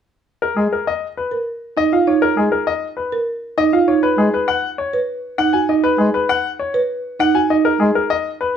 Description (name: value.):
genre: classical, minimalist pattern music.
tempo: 199 BPM.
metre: 6/4.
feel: straight.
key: unclear.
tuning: A4 = 440 Hz.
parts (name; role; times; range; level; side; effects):
clear baby grand piano; melody; 0.4-8.6 s; G#4 to G#5; -18 LUFS; left 5 dB; none.
mellow bass clarinet; accompaniment; 0.6-7.9 s; G#3; -18 LUFS; left 1 dB; none.
folk marimba with soft mallets; arpeggios; 1.3-7.7 s; D#4 to B4; -18 LUFS; right 6 dB; none.
room: light reverb.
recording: none.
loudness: -15 LUFS.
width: side -8 dB against mid.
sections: 0.4-8.6 A section.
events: none.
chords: 0.4 C#add9 (rootless); 4.0 G#m7; 7.6 C#sus2 (rootless).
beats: | 0.41 0.71 1.02 1.32 1.62 1.92 | 2.22 2.52 2.83 3.13 3.43 3.73 | 4.03 4.33 4.63 4.94 5.24 5.54 | 5.84 6.14 6.44 6.75 7.05 7.35 | 7.65 7.95 8.25 8.55.